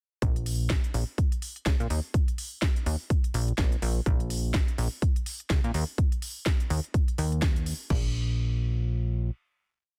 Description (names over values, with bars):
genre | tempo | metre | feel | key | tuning
piano house | 125 BPM | 4/4 | swing 58% on 16ths | Bb minor | A4 = 440 Hz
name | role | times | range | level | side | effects
plucky analog bass | bass | 0.2-9.3 s | Bb1 to Bb2 | -30 LUFS | equal | sidechain pumping
house drum kit | drums | 0.2-8.0 s | crash cymbal, kick drum | -28 LUFS | equal | none
house drum kit | drums | 0.2-7.8 s | hi-hat, snare drum | -37 LUFS | equal | none
room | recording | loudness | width
digital ambience | dense, heavily limited modern master | -28 LUFS | mono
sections
0.2-7.9 groove; 7.9-10.0 final note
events
none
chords
none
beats
| 0.22 0.70 1.18 1.66 | 2.14 2.62 3.10 3.58 | 4.06 4.54 5.02 5.50 | 5.98 6.46 6.94 7.42 | 7.90 8.38 8.86